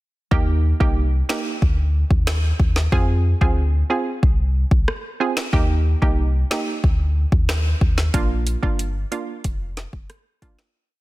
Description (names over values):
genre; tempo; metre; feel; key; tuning
dancehall; 92 BPM; 4/4; straight; Eb major; A4 = 440 Hz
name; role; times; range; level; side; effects
hollow square pluck; accompaniment; 0.3-10.6 s; Bb3 to Ab4; -25 LUFS; right 4 dB; chorus
warm sub bass; bass; 0.3-10.1 s; F1 to F2; -19 LUFS; equal; none
afro-pop drum kit; drums; 0.3-10.7 s; finger snaps, hi-hat, kick drum, rim click, snare drum; -20 LUFS; equal; overdrive, soft clipping on snare
room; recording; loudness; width
digital ambience; dense, heavily limited modern master; -17 LUFS; side -18 dB against mid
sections
0.3-10.7 verse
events
fade-out 8.1-10.7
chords
0.3 Eb; 2.9 Fm; 5.5 Eb; 8.1 Bb